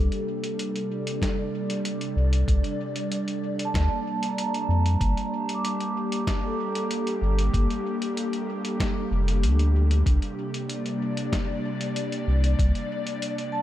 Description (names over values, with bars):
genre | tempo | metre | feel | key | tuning
ambient dub | 95 BPM | 4/4 | straight | unclear | A4 = 441 Hz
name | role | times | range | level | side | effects
airy breathy pad | sustained chords | 0.0-13.6 s | C3 to D5 | -30 LUFS | equal | chorus
vibraphone with soft mallets | arpeggios | 0.0-13.6 s | Bb3 to D6 | -32 LUFS | right 1 dB | tape echo
warm sub bass | bass | 0.0-12.7 s | F1 to F2 | -21 LUFS | equal | tube saturation
lo-fi sampler-style drum kit | drums | 0.1-13.5 s | hi-hat, snare drum | -34 LUFS | left 1 dB | dub echo
electronic kick drum | drums | 1.2-12.7 s | none | -27 LUFS | equal | none
room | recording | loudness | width
light reverb | none | -23 LUFS | side -13 dB against mid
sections
0.0-13.6 A section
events
none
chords
0.0 Csus2; 5.0 Gm; 10.1 Csus2